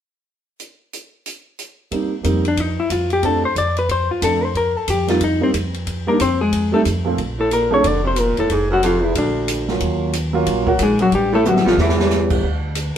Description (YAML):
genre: jazz, small-group swing and bop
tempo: 182 BPM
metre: 4/4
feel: swing 62% on 8ths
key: unclear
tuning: A4 = 444 Hz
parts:
  - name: open jazz drum kit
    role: drums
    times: 0.6-12.8 s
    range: crash cymbal, hi-hat, kick drum, ride cymbal, snare drum, toms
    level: -27 LUFS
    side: equal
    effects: none
  - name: warm grand piano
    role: accompaniment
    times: 1.9-12.4 s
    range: Bb2 to G4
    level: -20 LUFS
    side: right 3 dB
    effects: none
  - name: upright bass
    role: bass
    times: 2.2-12.9 s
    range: E1 to F2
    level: -23 LUFS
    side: equal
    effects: none
  - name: hollow-body jazz guitar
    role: melody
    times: 2.5-12.4 s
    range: E3 to D5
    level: -18 LUFS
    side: left 3 dB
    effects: none
  - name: warm baritone saxophone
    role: second line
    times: 7.4-12.4 s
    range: D2 to D3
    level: -22 LUFS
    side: right 4 dB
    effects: none
room: moderate studio reverb, RT60 0.8 s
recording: heard from further back in the room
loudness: -16 LUFS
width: side -9 dB against mid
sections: 0.6-1.9 A section; 1.9-7.2 B section; 7.2-13.0 C section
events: drum fill 11.4-12.1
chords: 0.6 N.C.; 1.9 F7sus4; 3.2 F6; 4.5 F7sus4; 5.9 Cm7; 6.5 F9; 7.2 Bbmaj7; 8.5 Fmmaj7; 9.2 Bb; 9.8 Ebm9; 11.1 A7; 12.4 N.C.